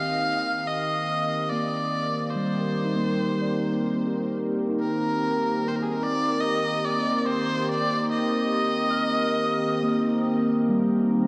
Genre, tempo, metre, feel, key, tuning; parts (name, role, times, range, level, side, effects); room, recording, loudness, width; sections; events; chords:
ambient; 73 BPM; 4/4; straight; Eb major; A4 = 440 Hz
clear electric violin; melody; 0.0-10.6 s; Ab4 to F5; -30 LUFS; equal; tape echo
warm analog pad; sustained chords; 0.0-11.3 s; Eb3 to Bb4; -29 LUFS; equal; chorus
mellow tine electric piano; arpeggios; 0.0-11.3 s; G3 to F6; -32 LUFS; equal; tape echo
analog drone; drone; 0.0-11.3 s; barely audible
wet cathedral reverb, RT60 5.4 s; cassette tape; -25 LUFS; mono
0.0-11.3 A section
0.0 Eb6